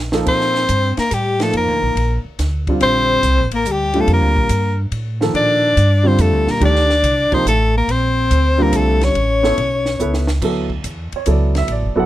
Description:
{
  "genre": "modal jazz",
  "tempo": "142 BPM",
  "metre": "3/4",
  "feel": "swing 67% on 8ths",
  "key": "Bb major",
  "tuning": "A4 = 440 Hz",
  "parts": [
    { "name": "upright bass", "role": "bass", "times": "0.0-12.1 s", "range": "D1 to Bb2", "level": "-18 LUFS", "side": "equal", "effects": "none" },
    { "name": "warm baby grand piano", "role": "accompaniment", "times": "0.1-12.1 s", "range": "C3 to F#5", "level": "-20 LUFS", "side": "right 2 dB", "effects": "none" },
    { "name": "compact cocktail drum kit", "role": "drums", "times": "0.1-11.8 s", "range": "crash cymbal, hi-hat, kick drum, ride cymbal, snare drum", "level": "-28 LUFS", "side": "right 1 dB", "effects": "none" },
    { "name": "bright soprano saxophone", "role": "melody", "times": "0.3-10.3 s", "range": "G4 to D5", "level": "-17 LUFS", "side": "left 1 dB", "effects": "none" },
    { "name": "breathy alto saxophone", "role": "second line", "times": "0.3-10.3 s", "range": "G3 to D4", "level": "-23 LUFS", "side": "left 4 dB", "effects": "none" }
  ],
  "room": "little or no reverb",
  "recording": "close, detailed microphones",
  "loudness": "-14 LUFS",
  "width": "side -14 dB against mid",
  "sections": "0.3-10.4 A section; 10.4-12.1 B section",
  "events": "drum fill 0.0, 10.0-10.4",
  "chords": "0.3 Bbmaj9; 9.2 A; 10.4 Dmaj9",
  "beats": "| 0.26 0.69 1.11 | 1.53 1.96 2.38 | 2.81 3.23 3.65 | 4.08 4.50 4.92 | 5.35 5.77 6.19 | 6.62 7.04 7.46 | 7.88 8.31 8.73 | 9.15 9.57 10.00 | 10.42 10.84 11.26 | 11.69"
}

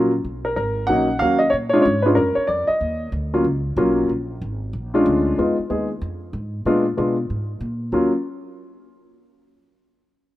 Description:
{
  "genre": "jazz piano trio",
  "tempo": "187 BPM",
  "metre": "4/4",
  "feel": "swing 63% on 8ths",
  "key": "unclear",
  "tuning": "A4 = 441 Hz",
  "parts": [
    { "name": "warm baby grand piano", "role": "melody", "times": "0.0-8.1 s", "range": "Gb3 to F#5", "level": "-18 LUFS", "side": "equal", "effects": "none" },
    { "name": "upright bass", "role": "bass", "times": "0.0-8.1 s", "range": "Ab1 to Cb3", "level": "-27 LUFS", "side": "equal", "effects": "none" }
  ],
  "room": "light reverb, small room ambience",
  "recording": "rough home demo mix",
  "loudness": "-18 LUFS",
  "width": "side -15 dB against mid",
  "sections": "0.0-5.4 A section; 5.4-7.9 B section; 7.9-9.2 C section",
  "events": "none",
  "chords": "0.2 Bmaj7; 1.5 Bb7#9; 2.8 Ebm9; 4.1 Bb7#9; 5.4 Fm7b5; 6.6 Bb7b9; 7.9 N.C.",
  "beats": "| 0.24 0.56 0.89 1.21 | 1.53 1.85 2.17 2.49 | 2.81 3.13 3.45 3.77 | 4.09 4.41 4.73 5.05 | 5.37 5.69 6.01 6.33 | 6.65 6.97 7.29 7.61 | 7.93"
}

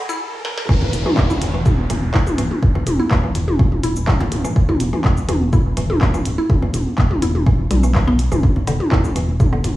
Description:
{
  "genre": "minimal techno",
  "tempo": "124 BPM",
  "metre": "4/4",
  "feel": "straight",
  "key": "unclear",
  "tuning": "A4 = 436 Hz",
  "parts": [
    { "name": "riser, downlifter and zap", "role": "sound effects", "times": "0.0-4.6 s", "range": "none", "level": "-28 LUFS", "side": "equal", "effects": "none" },
    { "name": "mallet-like synth pluck", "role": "riff", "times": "0.1-9.5 s", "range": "D3 to E4", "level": "-24 LUFS", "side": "equal", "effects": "chorus, cassette tape, sidechain pumping, dub echo" },
    { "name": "minimal click drum kit", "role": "drums", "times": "0.1-9.7 s", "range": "handclaps, hi-hat, shaker, snare drum", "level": "-26 LUFS", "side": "equal", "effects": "high-pass filter on hats, high-pass filter on perc, high-pass filter on snare" },
    { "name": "rubbery square bass", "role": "bass", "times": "0.7-9.7 s", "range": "D1 to E2", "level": "-20 LUFS", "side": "equal", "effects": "sidechain pumping" },
    { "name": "electronic kick drum", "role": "drums", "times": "0.7-9.5 s", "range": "none", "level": "-17 LUFS", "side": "equal", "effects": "none" },
    { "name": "electronic toms and congas", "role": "percussion", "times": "0.7-9.7 s", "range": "none", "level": "-22 LUFS", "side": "equal", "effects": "dub echo" }
  ],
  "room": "light reverb",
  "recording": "played on a big sound system in a bare room, stone room reverb, high-pass filter, small room ambience",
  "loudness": "-15 LUFS",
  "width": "side -16 dB against mid",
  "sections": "0.7-9.8 A section",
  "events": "riser 0.0-0.7; drum fill 0.4; drop 0.7-9.8",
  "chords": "0.0 E5; 0.7 N.C.",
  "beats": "0.21 | 0.69 1.17 1.66 2.14 | 2.63 3.11 3.59 4.08 | 4.56 5.04 5.53 6.01 | 6.50 6.98 7.46 7.95 | 8.43 8.92 9.40"
}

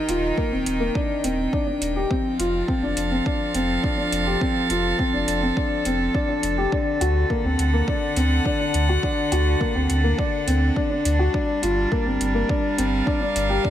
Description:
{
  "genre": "piano and strings electronica",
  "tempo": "104 BPM",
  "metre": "4/4",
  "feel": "straight",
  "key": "unclear",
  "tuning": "A4 = 440 Hz",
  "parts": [
    { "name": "rich string quartet", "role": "sustained chords", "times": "0.0-13.7 s", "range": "D3 to G5", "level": "-26 LUFS", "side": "right 2 dB", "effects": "sidechain pumping" },
    { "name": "dark baby grand piano", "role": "riff", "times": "0.0-13.7 s", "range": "Bb3 to G4", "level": "-23 LUFS", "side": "left 2 dB", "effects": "ping-pong delay" },
    { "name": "warm sub bass", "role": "bass", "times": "0.1-13.6 s", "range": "Eb1 to D2", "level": "-24 LUFS", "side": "right 1 dB", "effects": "sidechain pumping" },
    { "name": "electronic hi-hat", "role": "drums", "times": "0.1-13.5 s", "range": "none", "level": "-29 LUFS", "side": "right 2 dB", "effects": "overdrive" },
    { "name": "electronic kick drum", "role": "drums", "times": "0.4-13.7 s", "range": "none", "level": "-26 LUFS", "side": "right 1 dB", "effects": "overdrive" }
  ],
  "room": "light reverb, studio reverb",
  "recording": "none",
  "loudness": "-20 LUFS",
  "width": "side -11 dB against mid",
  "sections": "0.0-13.7 A section",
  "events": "none",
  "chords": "0.0 Eb; 2.1 F; 6.7 D; 11.3 Gm7",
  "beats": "0.38 0.95 1.53 | 2.11 2.68 3.26 3.84 | 4.41 4.99 5.57 6.14 | 6.72 7.30 7.88 8.45 | 9.03 9.61 10.18 10.76 | 11.34 11.91 12.49 13.07 | 13.64"
}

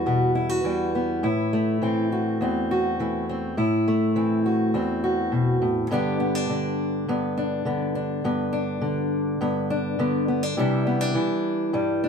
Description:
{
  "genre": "folk",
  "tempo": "103 BPM",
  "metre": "4/4",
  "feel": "straight",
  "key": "G major",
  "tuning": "A4 = 440 Hz",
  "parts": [
    { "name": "fingerpicked steel-string acoustic guitar", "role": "solo", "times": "0.0-12.1 s", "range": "E2 to G4", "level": "-22 LUFS", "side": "equal", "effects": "none" }
  ],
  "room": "moderate studio reverb, RT60 0.7 s",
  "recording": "band playing live in one room",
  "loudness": "-22 LUFS",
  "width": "side -6 dB against mid",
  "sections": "0.0-5.9 A section; 5.9-12.1 B section",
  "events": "build-up 0.0-5.9",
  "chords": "0.0 Emadd9; 1.2 Am; 5.9 G; 10.6 Cadd9",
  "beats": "0.07 0.65 | 1.24 1.82 2.41 2.99 | 3.58 4.16 4.75 5.33 | 5.91 6.50 7.08 7.66 | 8.24 8.83 9.41 9.99 | 10.57 11.15 11.74"
}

